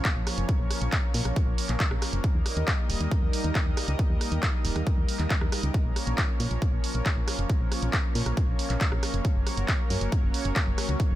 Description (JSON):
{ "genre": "uplifting trance", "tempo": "137 BPM", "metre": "4/4", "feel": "straight", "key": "Bb minor", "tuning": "A4 = 442 Hz", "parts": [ { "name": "lush unison pad", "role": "sustained chords", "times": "0.0-11.2 s", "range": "F3 to Eb5", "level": "-33 LUFS", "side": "equal", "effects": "chorus, sidechain pumping" }, { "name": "electronic kick drum", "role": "drums", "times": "0.0-11.1 s", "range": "none", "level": "-26 LUFS", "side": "equal", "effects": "overdrive, studio reverb" }, { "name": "punchy analog drum machine", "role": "drums", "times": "0.0-11.1 s", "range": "handclaps, hi-hat, rim click", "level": "-32 LUFS", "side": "right 1 dB", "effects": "studio reverb" }, { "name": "solid FM bass", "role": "bass", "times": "0.2-11.2 s", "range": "Eb1 to Bb2", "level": "-28 LUFS", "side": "equal", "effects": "sidechain pumping" } ], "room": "little or no reverb", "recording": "none", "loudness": "-24 LUFS", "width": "side -14 dB against mid", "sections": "0.0-11.2 A section", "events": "none", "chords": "0.0 Bbm; 2.2 Eb; 5.7 Bbm; 9.2 Gb" }